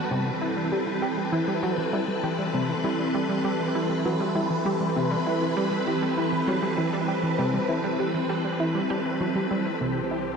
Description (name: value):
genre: ambient, sequencer-driven space music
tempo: 99 BPM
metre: 4/4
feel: straight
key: unclear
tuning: A4 = 441 Hz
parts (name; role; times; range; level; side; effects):
- phased string machine; sustained chords; 0.0-10.4 s; E3 to B4; -27 LUFS; equal; ensemble chorus, phaser
- wind-like tuned noise texture; texture; 0.0-10.4 s; A4 to C6; -35 LUFS; equal; built-in reverb
- wide unison pluck; arpeggios; 0.1-9.7 s; E3 to G4; -30 LUFS; right 1 dB; auto-pan, tape echo
- plucky analog bass; riff; 0.1-10.4 s; C3 to G4; -29 LUFS; equal; wide subtle chorus, tape echo
- fat analog bass; bass; 9.8-10.4 s; C2; -48 LUFS; equal; none
room: wet cathedral reverb, RT60 5.2 s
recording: in a vast, echoing space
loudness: -23 LUFS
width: side -6 dB against mid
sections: 0.0-9.8 A section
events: filter sweep on synth arpeggio sound 0.0-9.8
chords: 0.1 Cmaj7; 9.8 C